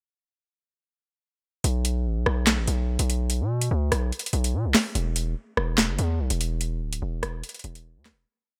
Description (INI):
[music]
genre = hip hop, drill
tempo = 145 BPM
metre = 4/4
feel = half-time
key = B minor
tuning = A4 = 435 Hz
[part]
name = distorted 808-style bass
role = bass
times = 1.6-8.3 s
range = D1 to B2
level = -27 LUFS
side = equal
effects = distortion
[part]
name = drill drum kit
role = drums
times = 1.6-8.2 s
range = handclaps, hi-hat, rim click, snare drum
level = -27 LUFS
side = equal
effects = none
[sound]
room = digital ambience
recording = none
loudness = -26 LUFS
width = mono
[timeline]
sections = 1.6-8.3 hook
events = fade-out 6.6-8.3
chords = none